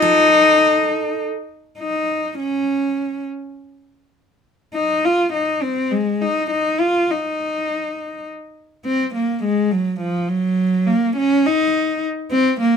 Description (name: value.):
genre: folk.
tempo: 103 BPM.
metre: 3/4.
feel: straight.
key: unclear.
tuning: A4 = 440 Hz.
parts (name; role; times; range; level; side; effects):
warm cello; melody; 0.0-12.8 s; F3 to F4; -17 LUFS; left 1 dB; none.
picked steel-string acoustic guitar; arpeggios; 0.0-1.3 s; F4 to A4; -23 LUFS; right 9 dB; none.
room: light reverb.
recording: minimal, uncompressed stereo recording.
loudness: -17 LUFS.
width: side -6 dB against mid.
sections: 0.0-1.8 A section; 1.8-8.8 B section; 8.8-12.8 C section.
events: none.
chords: 0.0 F7; 1.8 N.C..